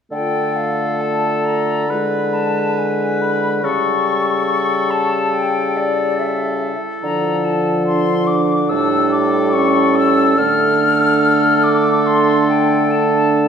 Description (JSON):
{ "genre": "classical, slow romantic movement for wind quintet", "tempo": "71 BPM", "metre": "4/4", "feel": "rubato", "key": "D minor", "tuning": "A4 = 440 Hz", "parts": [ { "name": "silver concert flute", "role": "melody", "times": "0.1-13.5 s", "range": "D5 to F6", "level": "-19 LUFS", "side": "left 4 dB", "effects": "none" }, { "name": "warm oboe", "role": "second line", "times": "0.1-13.5 s", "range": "A4 to B4", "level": "-23 LUFS", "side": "left 1 dB", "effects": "none" }, { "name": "clear French horn", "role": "accompaniment", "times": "0.1-13.5 s", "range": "F3 to A3", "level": "-22 LUFS", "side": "right 1 dB", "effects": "none" }, { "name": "mellow clarinet", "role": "accompaniment", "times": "0.1-13.5 s", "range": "C#4 to F4", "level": "-22 LUFS", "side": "right 6 dB", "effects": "none" }, { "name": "mellow bassoon", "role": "bass", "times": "0.1-13.5 s", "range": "A2 to D3", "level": "-20 LUFS", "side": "equal", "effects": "none" } ], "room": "wet recital hall reverb, RT60 1.5 s", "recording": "heard from further back in the room", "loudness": "-14 LUFS", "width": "side -7 dB against mid", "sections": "0.1-13.5 A section", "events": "none", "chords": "0.1 Dm; 1.9 E7/D; 3.6 A7/C#; 7.0 Dm; 8.7 A7; 10.4 Dm", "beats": "| 0.12 1.01 1.91 2.79 | 3.64 4.49 5.35 6.20 | 7.04 7.88 8.71 9.55 | 10.38 11.23 12.06 12.91" }